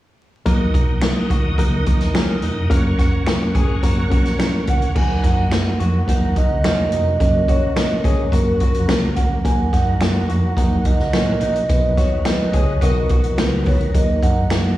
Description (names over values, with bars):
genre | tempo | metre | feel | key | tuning
uptempo 1960s-style soul | 107 BPM | 4/4 | straight | Eb minor | A4 = 440 Hz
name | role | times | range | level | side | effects
reed electric piano | accompaniment | 0.5-14.8 s | Gb3 to D#5 | -23 LUFS | left 1 dB | plate reverb, slapback echo
bright tonewheel organ | sustained chords | 0.5-14.8 s | Db3 to Eb6 | -28 LUFS | right 1 dB | slow rotary speaker, chorus vibrato
hollow-body short-scale fingered electric bass | bass | 0.5-14.7 s | Fb1 to Gb2 | -22 LUFS | equal | none
swinging big-band drum kit | drums | 0.5-14.6 s | crash cymbal, hi-hat, kick drum, snare drum | -19 LUFS | equal | none
electric guitar through a small old amp | riff | 0.7-14.4 s | Bb3 to Ab4 | -32 LUFS | left 3 dB | slapback echo
finger snap | percussion | 1.0-14.6 s | none | -34 LUFS | right 2 dB | none
vibraphone with soft mallets | melody | 4.7-14.8 s | Bb4 to Ab5 | -23 LUFS | right 2 dB | plate reverb, slapback echo
mellow horn section | second line | 12.8-13.0 s | F#4 to D#5 | -31 LUFS | left 1 dB | plate reverb, slapback echo
room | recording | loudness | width
light reverb | live gig heard through the venue's PA, recital hall reverb, vinyl crackle, small room ambience | -15 LUFS | side -15 dB against mid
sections
0.5-5.0 A section; 5.0-14.8 B section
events
band accent 11.7-13.9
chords
0.5 Ebm; 2.7 Gb; 5.0 Ebm; 7.2 Gb; 9.4 Ebm; 11.7 B; 13.9 Ebm